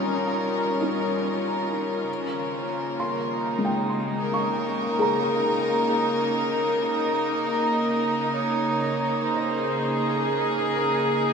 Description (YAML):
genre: ambient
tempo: 67 BPM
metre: 3/4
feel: straight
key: Eb mixolydian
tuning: A4 = 440 Hz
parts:
  - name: rich chamber string section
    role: sustained chords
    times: 0.0-11.3 s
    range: Db3 to Bb4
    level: -23 LUFS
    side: equal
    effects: shimmer reverb
  - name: felt-muted upright piano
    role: arpeggios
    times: 0.0-11.3 s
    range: Ab3 to Db6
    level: -30 LUFS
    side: equal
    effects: shimmer reverb, tape echo
  - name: overtone-sweeping drone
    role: drone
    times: 0.1-2.2 s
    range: Eb3 to Bb3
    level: -49 LUFS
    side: equal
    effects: none
  - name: mellow flugelhorn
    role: melody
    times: 2.1-11.3 s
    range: Eb4 to Eb5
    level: -36 LUFS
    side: right 2 dB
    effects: shimmer reverb, tape echo
room: wet cathedral reverb, RT60 6.6 s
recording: none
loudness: -22 LUFS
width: side -6 dB against mid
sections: 0.0-2.1 A section; 2.1-11.3 B section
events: fade-in on flugelhorn 2.1-11.3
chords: 0.0 Eb9; 2.1 Eb7sus4